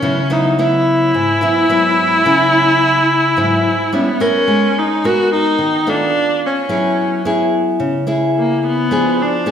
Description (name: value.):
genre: bossa nova.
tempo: 108 BPM.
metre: 4/4.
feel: straight.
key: unclear.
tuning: A4 = 440 Hz.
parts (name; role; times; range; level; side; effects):
rich viola; melody; 0.0-9.5 s; A#3 to F#4; -15 LUFS; equal; none.
nylon-string guitar; accompaniment; 0.0-9.5 s; G#2 to A#4; -16 LUFS; equal; none.
room: wet recital hall reverb, RT60 1.4 s.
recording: recorded in a church or concert hall.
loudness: -12 LUFS.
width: side -8 dB against mid.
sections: 0.0-9.5 A section.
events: none.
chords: 0.0 C#m7; 3.9 Gmaj7#11; 4.5 G#m9; 6.1 Bm9b5; 6.7 F#9sus4; 8.9 Fdim7.